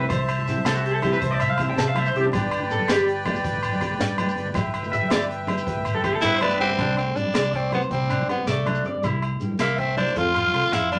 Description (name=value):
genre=highlife guitar band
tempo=107 BPM (dotted quarters)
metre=12/8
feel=straight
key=C major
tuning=A4 = 441 Hz
part: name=nylon-string guitar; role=accompaniment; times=0.0-10.7 s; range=E3 to A4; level=-36 LUFS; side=equal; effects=none
part: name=accordion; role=sustained chords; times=0.0-6.8 s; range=B4 to A5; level=-31 LUFS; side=equal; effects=light tremolo tuning
part: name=electric guitar through a small old amp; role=arpeggios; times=0.0-11.0 s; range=D4 to A5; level=-28 LUFS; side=equal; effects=none
part: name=fingered electric bass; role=bass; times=0.0-11.0 s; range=G1 to C3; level=-31 LUFS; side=equal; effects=none
part: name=congas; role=percussion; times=0.0-11.0 s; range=none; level=-35 LUFS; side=equal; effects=none
part: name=jazz brush drum kit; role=drums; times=0.1-11.0 s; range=hi-hat, kick drum, snare drum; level=-31 LUFS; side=equal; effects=none
part: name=agogo bells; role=percussion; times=0.1-11.0 s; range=none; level=-35 LUFS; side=equal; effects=none
part: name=shekere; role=percussion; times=0.1-10.8 s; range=none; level=-36 LUFS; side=equal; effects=none
part: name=breathy tenor saxophone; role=melody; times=6.2-11.0 s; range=A3 to F4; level=-26 LUFS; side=equal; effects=none
part: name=trombone with metal mute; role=second line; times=6.2-11.0 s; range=D3 to C4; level=-38 LUFS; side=equal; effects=none
room=wet studio reverb, RT60 0.6 s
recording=none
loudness=-23 LUFS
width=mono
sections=0.0-6.8 A section; 6.8-11.0 B section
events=clean electric guitar solo 0.0-6.8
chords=0.0 C; 2.3 G; 6.8 Csus2; 9.0 C7; 10.2 F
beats=| 0.10 0.65 1.21 1.76 | 2.32 2.88 3.44 3.99 | 4.55 5.11 5.67 6.23 | 6.79 7.35 7.91 8.47 | 9.03 9.60 10.16 10.72